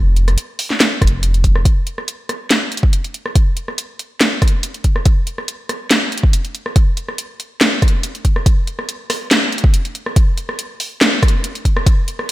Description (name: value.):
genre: deep dubstep.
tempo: 141 BPM.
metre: 4/4.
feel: swing 54% on 16ths, half-time.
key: unclear.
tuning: A4 = 440 Hz.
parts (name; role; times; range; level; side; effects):
soft dub sub bass; bass; 0.0-1.6 s; F1; -15 LUFS; equal; none.
garage drum kit; drums; 0.2-12.3 s; hi-hat, rim click, snare drum; -17 LUFS; equal; none.
electronic kick drum; drums; 1.0-12.0 s; none; -13 LUFS; equal; none.
room: light reverb.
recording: none.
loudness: -14 LUFS.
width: side -17 dB against mid.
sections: 0.0-1.7 A section; 1.7-12.3 B section.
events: build-up 1.7-12.3.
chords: none.